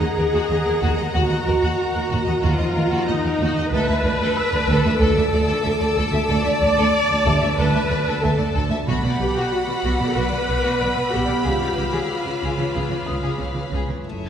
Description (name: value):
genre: cinematic, suspense film score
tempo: 93 BPM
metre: 4/4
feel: straight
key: unclear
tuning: A4 = 438 Hz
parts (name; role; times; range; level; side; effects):
- warm symphonic violin section; melody; 0.0-14.3 s; E5 to B5; -30 LUFS; equal; none
- warm symphonic violin section; second line; 0.0-14.3 s; F#4 to F#5; -28 LUFS; left 2 dB; none
- warm symphonic viola section; accompaniment; 0.0-14.3 s; D#4 to D5; -24 LUFS; equal; none
- glass harmonica; sustained chords; 0.0-14.3 s; E#4 to A#5; -34 LUFS; right 1 dB; none
- mellow French horn section; sustained chords; 0.0-14.3 s; E#3 to D5; -28 LUFS; left 3 dB; none
- rich symphonic cello section; bass; 0.0-14.3 s; D2 to C#3; -25 LUFS; right 2 dB; none
- felt-muted upright piano; texture; 0.0-14.1 s; C#4 to E6; -34 LUFS; equal; none
- warm symphonic double bass section; bass; 0.2-14.3 s; F#1 to D#2; -25 LUFS; right 2 dB; none
- rich symphonic violin section; texture; 3.7-14.3 s; C#6 to E#6; -34 LUFS; left 4 dB; none
room: wet scoring stage reverb, RT60 1.7 s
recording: heard from further back in the room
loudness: -18 LUFS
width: side -8 dB against mid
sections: 0.0-14.0 A section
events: none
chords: 0.0 D#m; 3.7 Dsus2; 8.9 Bm; 11.5 C#7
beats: 0.49 | 1.14 1.78 2.43 3.07 | 3.72 4.36 5.01 5.65 | 6.30 6.94 7.59 8.23 | 8.88 9.52 10.17 10.81 | 11.46 12.10 12.75 13.39 | 14.04